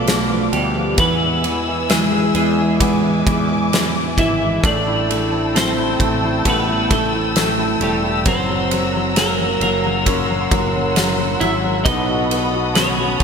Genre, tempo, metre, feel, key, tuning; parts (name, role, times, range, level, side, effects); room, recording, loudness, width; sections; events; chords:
pop ballad; 66 BPM; 4/4; straight; A4 = 440 Hz
clean electric guitar; melody; 0.0-13.2 s; G3 to E5; -20 LUFS; right 1 dB; lush chorus, ping-pong delay
warm grand piano; accompaniment; 0.0-13.2 s; B2 to F#4; -23 LUFS; left 4 dB
dark studio string section; sustained chords; 0.0-13.2 s; A4 to E6; -23 LUFS; left 1 dB
picked steel-string acoustic guitar; arpeggios; 0.0-13.2 s; E2 to B4; -28 LUFS; right 7 dB; lush chorus
fretless electric bass; bass; 0.0-13.2 s; E1 to E2; -25 LUFS; equal
huge arena drum kit; drums; 0.1-13.2 s; kick drum, ride cymbal, snare drum; -21 LUFS; equal; gated reverb
moderate lush hall reverb, RT60 3.1 s; bright 1980s-style digital production; -15 LUFS; side -6 dB against mid
0.0-13.2 A section
0.0 Bdim; 1.0 E; 4.6 Am7; 8.3 F#7; 11.8 B7